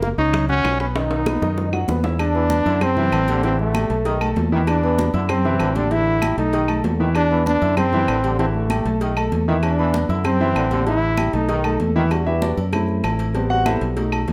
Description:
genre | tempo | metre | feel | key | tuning
latin, salsa | 194 BPM | 4/4 | straight | E minor | A4 = 440 Hz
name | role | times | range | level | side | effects
bright trombone | melody | 0.0-11.8 s | A3 to E4 | -24 LUFS | equal | none
clear concert grand piano | accompaniment | 0.0-14.2 s | D#3 to F#6 | -26 LUFS | equal | none
fingered electric bass | bass | 0.0-14.3 s | F#1 to F#2 | -25 LUFS | equal | none
bongos and cowbell | percussion | 0.0-14.3 s | none | -34 LUFS | equal | none
congas | percussion | 0.0-14.3 s | none | -32 LUFS | equal | none
claves | percussion | 0.3-14.3 s | none | -35 LUFS | equal | none
timbales and agogo bells | percussion | 0.3-14.3 s | none | -32 LUFS | equal | none
clear trombone section | second line | 2.3-12.0 s | C3 to E3 | -32 LUFS | equal | none
room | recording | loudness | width
moderate large studio reverb, RT60 1.0 s | none | -20 LUFS | mono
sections
0.0-2.2 A section; 2.2-12.1 B section; 12.1-14.3 C section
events
drum fill 1.0-2.2; grand piano solo 12.1-14.3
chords
0.0 F#; 1.0 B; 2.2 E5; 2.8 F#m7b5; 3.4 A5; 4.1 B7; 4.7 E5; 5.3 F#m7b5; 5.9 A5; 6.5 B7; 7.2 E5; 7.8 F#m7b5; 8.4 A5; 9.0 B7; 9.6 E5; 10.2 F#m7b5; 10.9 A5; 11.5 B7; 12.1 Em7; 12.7 F#m7b5; 13.3 Am7

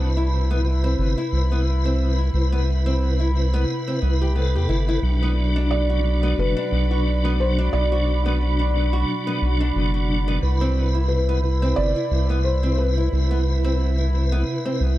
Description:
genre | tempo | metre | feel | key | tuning
trip hop | 89 BPM | 4/4 | swing 58% on 16ths | unclear | A4 = 441 Hz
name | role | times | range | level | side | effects
tonewheel organ | accompaniment | 0.0-15.0 s | B2 to B4 | -26 LUFS | equal | chorus vibrato, fast rotary speaker, tremolo, tape echo
warbly tape-like pad | sustained chords | 0.0-15.0 s | E4 to B5 | -31 LUFS | equal | chorus, built-in reverb, phaser
nylon-string guitar | arpeggios | 0.0-14.8 s | B3 to G4 | -30 LUFS | equal | tape echo
soft dub sub bass | bass | 0.0-15.0 s | F#1 to E2 | -20 LUFS | equal | none
felt-muted upright piano | melody | 5.7-15.0 s | B4 to D5 | -28 LUFS | equal | tape echo
room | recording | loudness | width
studio reverb | echo-heavy mix | -19 LUFS | side -15 dB against mid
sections
0.0-15.0 A section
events
none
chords
0.0 Cmaj7; 5.0 Bm; 10.4 Cmaj7

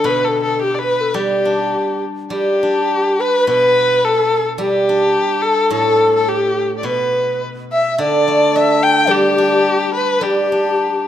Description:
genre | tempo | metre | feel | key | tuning
chinese traditional, Chinese chamber ensemble | 101-110 BPM | 2/4 | rubato | G gong mode | A4 = 441 Hz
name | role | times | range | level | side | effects
mellow hollow xiao | melody | 0.0-11.1 s | G4 to G5 | -17 LUFS | equal | none
rich erhu | second line | 0.0-11.1 s | G4 to G5 | -18 LUFS | left 3 dB | none
steel-string zither | accompaniment | 0.0-11.1 s | A2 to D4 | -19 LUFS | equal | none
room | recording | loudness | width
light reverb | close, detailed microphones | -13 LUFS | side -10 dB against mid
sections
0.0-2.3 A section; 2.3-11.1 B section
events
none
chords
none

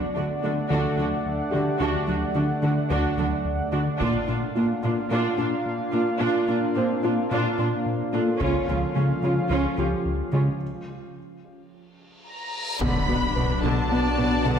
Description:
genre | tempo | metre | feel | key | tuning
cinematic, hybrid orchestral and electronic film score | 109 BPM | 4/4 | straight | unclear | A4 = 440 Hz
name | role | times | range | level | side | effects
warbly tape-like pad | sustained chords | 0.0-14.6 s | E#3 to F#5 | -28 LUFS | equal | chorus, built-in reverb
tight sequenced synth | arpeggios | 0.0-14.6 s | C#3 to B4 | -33 LUFS | equal | chorus, phaser, ping-pong delay
smooth synth bass | riff | 0.0-14.6 s | C#2 to B3 | -28 LUFS | left 2 dB | none
rich symphonic viola section | accompaniment | 0.2-14.6 s | D3 to F#4 | -29 LUFS | right 2 dB | none
rich symphonic cello section | bass | 0.2-14.5 s | A#2 to D3 | -30 LUFS | right 3 dB | none
felt-muted upright piano | texture | 0.7-14.6 s | G3 to C5 | -34 LUFS | left 2 dB | ping-pong delay
taiko ensemble | drums | 4.0-5.1, 8.4-9.5, 12.8-13.9 s | none | -37 LUFS | equal | none
reverse cymbal and impact | sound effects | 12.3-14.6 s | none | -32 LUFS | equal | none
clear symphonic violin section | melody | 12.3-14.6 s | A5 to B5 | -29 LUFS | left 1 dB | none
warm French horn section | sustained chords | 12.8-14.6 s | F#3 to D4 | -32 LUFS | left 7 dB | none
rich symphonic double bass section | bass | 12.8-14.5 s | B1 | -32 LUFS | right 2 dB | none
saturated sub bass | bass | 12.8-14.6 s | B1 | -30 LUFS | equal | none
rich symphonic violin section | second line | 13.9-14.6 s | D5 to F#5 | -30 LUFS | left 4 dB | none
room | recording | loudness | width
wet scoring stage reverb, RT60 1.7 s | heard from further back in the room | -22 LUFS | side -8 dB against mid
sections
0.0-12.8 A section; 12.8-14.6 B section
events
build-up 0.0-12.8; break 10.6-12.8; reverse cymbal 12.3-12.8; impact 12.8-14.6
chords
0.0 D; 4.0 A#; 8.4 C#; 10.6 N.C.; 12.8 Bm

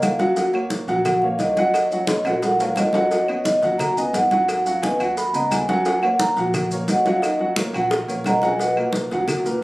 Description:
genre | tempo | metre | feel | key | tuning
Afro-Cuban jazz | 175 BPM | 4/4 | straight | Eb minor | A4 = 440 Hz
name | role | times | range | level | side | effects
vibraphone with soft mallets | melody | 0.0-8.8 s | Eb4 to Cb6 | -21 LUFS | equal | none
dark upright piano | accompaniment | 0.0-9.6 s | A#2 to Gb5 | -22 LUFS | equal | none
upright bass | bass | 0.0-9.6 s | Ab1 to Eb2 | -33 LUFS | equal | none
claves | percussion | 0.0-9.5 s | none | -35 LUFS | equal | none
congas | percussion | 0.0-9.6 s | none | -27 LUFS | equal | none
cowbell and bongos | percussion | 0.0-9.5 s | none | -29 LUFS | left 2 dB | none
maracas | percussion | 0.0-9.6 s | none | -36 LUFS | left 1 dB | none
timbales and agogo bells | percussion | 0.0-9.5 s | none | -28 LUFS | right 2 dB | none
room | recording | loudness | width
moderate club reverb, RT60 0.6 s | recorded on a phone in the room, studio reverb | -18 LUFS | side -19 dB against mid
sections
0.0-9.6 A section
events
vibraphone solo 0.0-9.6; drum fill 2.1-3.1, 7.9-8.6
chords
0.0 Ebm7; 3.1 Abm7; 5.9 Ebm7; 8.6 Bmaj7

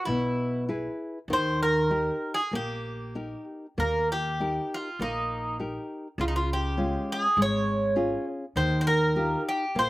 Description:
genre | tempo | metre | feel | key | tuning
fado-style ballad | 100 BPM | 4/4 | rubato | unclear | A4 = 438 Hz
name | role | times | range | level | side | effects
Greek bouzouki | melody | 0.0-9.9 s | Eb4 to Db5 | -27 LUFS | right 1 dB | none
nylon-string guitar | accompaniment | 0.1-9.9 s | B2 to B4 | -30 LUFS | left 1 dB | none
upright bass | bass | 0.1-9.9 s | Ab1 to Eb2 | -32 LUFS | equal | none
room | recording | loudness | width
little or no reverb | recorded outdoors, with no room sound | -25 LUFS | side -18 dB against mid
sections
0.0-9.9 A section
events
none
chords
0.0 E; 1.3 Eb; 6.2 Db; 8.6 Ebadd9

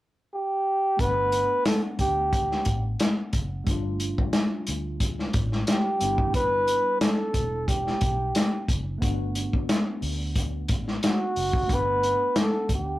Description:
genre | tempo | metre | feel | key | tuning
lush 1970s-style soul | 90 BPM | 4/4 | swing 54% on 16ths | G major | A4 = 437 Hz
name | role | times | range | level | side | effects
breathy flugelhorn | melody | 0.3-13.0 s | F#4 to B4 | -24 LUFS | equal | none
tine electric piano | accompaniment | 1.0-13.0 s | G3 to F#5 | -35 LUFS | left 1 dB | slow stereo tremolo
vintage muted fingered electric bass | bass | 1.0-13.0 s | E1 to D2 | -31 LUFS | equal | none
vintage drum kit | drums | 1.0-12.9 s | hi-hat, kick drum, snare drum | -25 LUFS | equal | none
room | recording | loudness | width
moderate small room reverb, RT60 0.5 s | rough rehearsal-room recording, tube saturation | -23 LUFS | side -16 dB against mid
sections
1.0-13.0 A section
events
none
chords
0.0 N.C.; 1.0 Gmaj7; 3.7 Dmadd11/G; 6.0 Em11; 9.0 Bm7/G

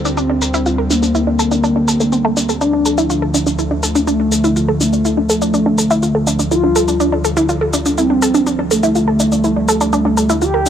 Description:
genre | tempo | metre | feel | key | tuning
melodic techno | 123 BPM | 4/4 | straight | D minor | A4 = 438 Hz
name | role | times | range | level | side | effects
warm analog pad | sustained chords | 0.0-10.7 s | D2 to C4 | -20 LUFS | equal | chorus
wide unison pluck | arpeggios | 0.0-10.7 s | A3 to Bb4 | -17 LUFS | right 1 dB | phaser, tape echo
shaker | drums | 0.1-10.7 s | none | -23 LUFS | left 2 dB | low-pass filter on perc, low-pass filter on room
expressive portamento lead | melody | 0.2-10.7 s | A3 to G4 | -16 LUFS | left 1 dB | wide subtle chorus, tape echo
room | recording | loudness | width
little or no reverb | dry, gritty hardware recording | -13 LUFS | side -9 dB against mid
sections
0.0-10.7 A section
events
filter sweep on analog synth lead 0.0-10.7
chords
0.0 Csus2/D; 2.6 Dm

